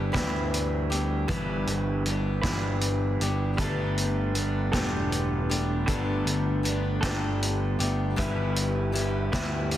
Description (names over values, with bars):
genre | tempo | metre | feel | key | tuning
folk rock and heartland rock | 52 BPM (dotted quarters) | 6/8 | straight | G major | A4 = 440 Hz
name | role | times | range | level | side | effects
picked steel-string acoustic guitar | accompaniment | 0.0-9.8 s | G2 to G4 | -30 LUFS | left 3 dB | none
electric guitar through a small old amp | riff | 0.0-9.8 s | G2 to B4 | -31 LUFS | right 2 dB | none
picked electric bass | bass | 0.0-9.8 s | E1 to D2 | -29 LUFS | equal | none
vintage drum kit | drums | 0.1-9.8 s | hi-hat, kick drum, snare drum | -31 LUFS | equal | soft clipping on kick
room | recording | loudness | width
light reverb, studio ambience | dense, heavily limited modern master | -24 LUFS | side -12 dB against mid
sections
0.0-9.8 A section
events
none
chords
0.0 Em7/G; 3.6 Gadd9; 8.2 Em7/G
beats
0.14 | 1.29 2.44 | 3.58 4.73 | 5.88 7.03 | 8.18 9.33